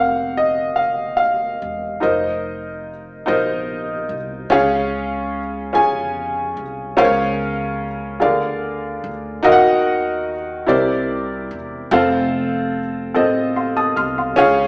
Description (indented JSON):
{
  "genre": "slow gospel",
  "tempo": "49 BPM (dotted quarters)",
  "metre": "6/8",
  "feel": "straight",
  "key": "unclear",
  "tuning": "A4 = 439 Hz",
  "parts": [
    { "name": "clear concert grand piano", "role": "accompaniment", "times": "0.0-14.7 s", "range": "C3 to F6", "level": "-16 LUFS", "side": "equal", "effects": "none" },
    { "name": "upright bass", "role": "bass", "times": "0.0-14.7 s", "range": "E1 to F2", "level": "-30 LUFS", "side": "equal", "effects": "none" }
  ],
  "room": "wet large studio reverb, RT60 1.3 s",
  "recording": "band playing live in one room, small speaker sound",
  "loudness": "-16 LUFS",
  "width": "side -30 dB against mid",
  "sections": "0.0-2.0 A section; 2.0-4.5 B section; 4.5-14.7 C section",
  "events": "grand piano solo 0.0-2.0",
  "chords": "0.0 F7sus4; 4.5 Db; 7.0 Bbm/Db; 8.2 Bb7/D; 9.5 Ebm; 10.7 C9; 11.9 F"
}